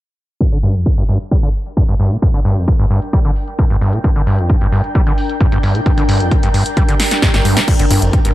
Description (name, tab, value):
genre	driving peak-time techno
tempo	132 BPM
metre	4/4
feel	straight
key	G minor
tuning	A4 = 440 Hz
part	overdriven acid bass	riff	0.4-8.3 s	G1 to G3	-16 LUFS	equal	distortion, sidechain pumping
part	electronic kick drum	drums	0.4-8.2 s	none	-14 LUFS	equal	none
part	punchy analog drum machine	drums	0.4-8.3 s	crash cymbal, hi-hat, snare drum	-19 LUFS	equal	overdrive, sidechain pumping on hats, sidechain pumping on cymbals
part	granular cloud pad	texture	2.4-8.3 s	D4 to G5	-22 LUFS	left 1 dB	built-in reverb, sidechain pumping
part	swell	sound effects	6.9-7.7 s	none	-25 LUFS	right 4 dB	none
part	tight sequencer bass	bass	7.8-8.3 s	G1	-17 LUFS	equal	sidechain pumping
room	little or no reverb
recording	low-pass filter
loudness	-12 LUFS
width	side -15 dB against mid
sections	0.4-7.7 A section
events	fade-in on ambient pad 0.4-7.7; filter sweep on acid bass 0.4-7.7; filter sweep 0.4-7.7; swell 6.9-7.7; drum fill 7.0-7.7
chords	0.4 Gm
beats	| 0.41 0.86 1.31 1.77 | 2.22 2.68 3.13 3.59 | 4.04 4.50 4.95 5.41 | 5.86 6.32 6.77 7.22 | 7.68 8.13